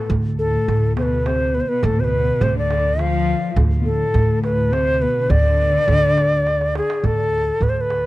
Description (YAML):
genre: Arabic maqam ensemble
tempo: 104 BPM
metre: 3/4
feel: straight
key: unclear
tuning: A4 = 440 Hz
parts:
  - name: bright reedy ney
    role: melody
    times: 0.0-8.1 s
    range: G#4 to F5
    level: -20 LUFS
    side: equal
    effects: tape echo
  - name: dark studio cello section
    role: second line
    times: 0.0-6.7 s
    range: A2 to F3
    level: -23 LUFS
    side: left 2 dB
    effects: tape echo
  - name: upright bass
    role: bass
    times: 0.1-8.1 s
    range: D2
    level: -21 LUFS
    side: equal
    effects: none
  - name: darbuka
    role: percussion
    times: 0.1-8.0 s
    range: none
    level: -24 LUFS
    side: right 3 dB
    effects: none
room: light reverb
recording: dry, close 1970s-style studio recording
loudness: -16 LUFS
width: side -17 dB against mid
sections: 0.0-7.0 A section; 7.0-8.1 B section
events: drum fill 6.5-7.0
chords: none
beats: | 0.11 0.69 1.27 | 1.84 2.42 3.00 | 3.58 4.15 4.73 | 5.31 5.88 6.46 | 7.04 7.62